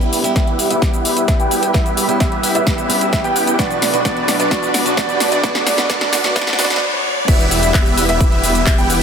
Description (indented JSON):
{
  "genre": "EDM, festival progressive house",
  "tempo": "130 BPM",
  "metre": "4/4",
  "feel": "straight",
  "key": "unclear",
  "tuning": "A4 = 439 Hz",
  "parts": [
    { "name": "direct-recorded clean electric guitar", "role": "accompaniment", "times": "0.0-6.8 s", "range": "B2 to B4", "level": "-24 LUFS", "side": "right 3 dB", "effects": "phaser, sidechain pumping, dub echo" },
    { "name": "lush unison pad", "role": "sustained chords", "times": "0.0-9.0 s", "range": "F#3 to E4", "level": "-28 LUFS", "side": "left 1 dB", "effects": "none" },
    { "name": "warm grand piano", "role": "arpeggios", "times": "0.0-9.0 s", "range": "D5 to G5", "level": "-22 LUFS", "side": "equal", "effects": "vintage 12-bit sampler grit, sidechain pumping, low-pass filter, dub echo" },
    { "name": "supersaw chords", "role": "riff", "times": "0.0-9.0 s", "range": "B3 to G5", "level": "-19 LUFS", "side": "right 1 dB", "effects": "analog chorus, sidechain pumping, low-pass filter, dub echo" },
    { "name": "detuned saw bass", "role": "bass", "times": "0.0-9.0 s", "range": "E1 to E2", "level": "-26 LUFS", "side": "equal", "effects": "none" },
    { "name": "big-room dance drum kit", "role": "drums", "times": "0.0-9.0 s", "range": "crash cymbal, handclaps, hi-hat, shaker, snare drum", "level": "-20 LUFS", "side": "left 1 dB", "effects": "none" },
    { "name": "riser", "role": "sound effects", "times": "0.0-7.3 s", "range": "none", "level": "-29 LUFS", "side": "left 1 dB", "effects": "none" },
    { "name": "electronic kick drum", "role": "drums", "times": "0.4-8.8 s", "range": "none", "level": "-17 LUFS", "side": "equal", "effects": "none" }
  ],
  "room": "moderate huge ambient reverb, RT60 6.7 s",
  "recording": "dense, heavily limited modern master, high-pass filter",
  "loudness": "-13 LUFS",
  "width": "side -7 dB against mid",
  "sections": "0.0-7.3 A section; 7.3-9.0 B section",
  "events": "build-up 0.0-7.3; drum fill 0.0-6.8; filter sweep on supersaw synth 0.0-7.3; filter sweep on grand piano 0.0-7.3; filter sweep 0.0-7.3; stop 6.8-7.3; drop 7.3-9.0",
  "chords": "0.0 Em; 3.6 Bm; 7.3 Em",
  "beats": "0.36 0.82 1.28 | 1.74 2.21 2.67 3.13 | 3.59 4.05 4.51 4.97 | 5.43 5.90 6.36 6.82 | 7.28 7.74 8.21 8.67"
}